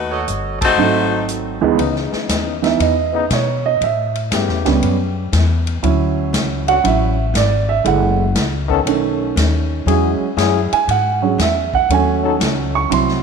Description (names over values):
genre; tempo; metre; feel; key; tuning
jazz, big band swing; 119 BPM; 4/4; swing 68% on 8ths; C# minor; A4 = 441 Hz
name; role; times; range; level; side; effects
edgy saxophone section; melody; 0.0-1.3 s; A3 to B#4; -18 LUFS; left 5 dB; none
upright bass; bass; 0.0-13.2 s; F#1 to B2; -19 LUFS; left 2 dB; none
bright trumpet section; stabs; 0.1-0.7 s; F#4 to A5; -25 LUFS; right 7 dB; none
swinging big-band drum kit; drums; 0.3-13.2 s; hi-hat, kick drum, ride cymbal, snare drum; -24 LUFS; left 2 dB; none
warm baby grand piano; accompaniment; 0.8-13.2 s; C#2 to C#6; -17 LUFS; right 8 dB; none
warm trombone section; sustained chords; 1.8-12.3 s; C#3 to A4; -22 LUFS; left 9 dB; none
room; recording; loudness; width
moderate echo chamber reverb, RT60 2.2 s; 1960s-style stereo with parts hard left and right; -14 LUFS; side -5 dB against mid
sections
0.0-1.8 A section; 1.8-13.2 B section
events
band accent 0.5; grand piano solo 1.8-13.2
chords
0.0 D#m7b5; 0.8 G#7b9; 1.8 C#m9; 3.8 A9; 5.8 Dmaj7; 7.9 F#m7; 8.9 B9; 9.9 E69; 11.9 D#m7b5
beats
0.28 0.78 1.29 | 1.79 2.29 2.80 3.31 | 3.81 4.31 4.82 5.33 | 5.83 6.33 6.84 7.35 | 7.85 8.36 8.86 9.37 | 9.87 10.38 10.89 11.39 | 11.90 12.40 12.91